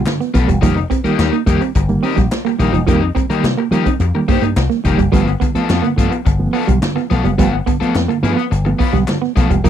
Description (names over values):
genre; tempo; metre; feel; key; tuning
funk; 106 BPM; 4/4; straight; G mixolydian; A4 = 439 Hz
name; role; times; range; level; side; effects
reed electric piano; stabs; 0.0-9.7 s; G2 to B3; -19 LUFS; right 3 dB; fast tremolo, tape echo
slap bass with an envelope filter; bass; 0.0-9.7 s; E1 to F3; -17 LUFS; left 1 dB; none
biting overdriven guitar; accompaniment; 0.1-9.7 s; B3 to C5; -21 LUFS; left 10 dB; none
swinging big-band drum kit; drums; 0.1-9.7 s; hi-hat, kick drum, snare drum; -19 LUFS; left 1 dB; none
group handclap; percussion; 0.1-9.2 s; none; -29 LUFS; left 6 dB; none
semi-hollow electric guitar; riff; 0.2-9.7 s; F3 to C4; -19 LUFS; right 12 dB; tube saturation
room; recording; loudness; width
light reverb; none; -13 LUFS; side -10 dB against mid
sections
0.0-9.7 A section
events
none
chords
0.0 G9; 0.6 F9sus4; 5.1 G9